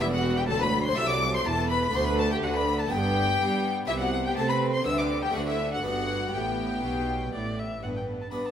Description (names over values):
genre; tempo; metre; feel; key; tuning
classical, baroque-style concerto movement with solo episodes; 123 BPM; 4/4; straight; G major; A4 = 440 Hz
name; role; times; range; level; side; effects
rich chamber violin section; melody; 0.0-8.5 s; B4 to E6; -32 LUFS; left 3 dB; none
rich violin; melody; 0.0-8.5 s; D5 to E6; -31 LUFS; left 3 dB; none
dark chamber violin section; second line; 0.0-8.5 s; D4 to E5; -33 LUFS; left 3 dB; none
harpsichord; accompaniment; 0.0-8.5 s; C2 to A4; -34 LUFS; equal; none
rich studio viola section; accompaniment; 0.0-8.5 s; E3 to B3; -34 LUFS; equal; none
clear chamber cello section; bass; 0.0-8.5 s; C2 to C4; -32 LUFS; right 3 dB; none
rich chamber double bass section; bass; 0.0-7.8 s; E1 to C3; -32 LUFS; right 2 dB; none
room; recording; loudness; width
wet recital hall reverb, RT60 1.8 s; none; -24 LUFS; side -9 dB against mid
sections
0.0-7.8 A section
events
none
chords
0.0 Em; 1.0 Am/C; 1.9 D; 2.9 G; 3.9 C5; 4.9 G/D; 5.4 D5; 5.9 G